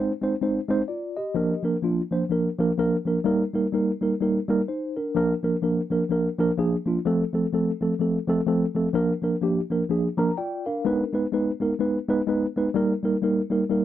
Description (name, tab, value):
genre	soul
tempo	126 BPM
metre	4/4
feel	swing 60% on 8ths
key	unclear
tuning	A4 = 438 Hz
part	mellow tine electric piano	solo	0.0-13.8 s	F3 to Bb5	-22 LUFS	equal	tube saturation, auto-pan
room	light reverb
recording	dark, warm production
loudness	-22 LUFS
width	side -12 dB against mid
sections	0.0-10.9 A section; 10.9-13.8 B section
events	tine electric piano fill 9.9-10.9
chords	0.0 Ab; 1.4 Bb; 3.3 Eb; 5.2 Bb; 7.1 F; 9.0 Bb; 10.9 Abm; 12.8 Eb/G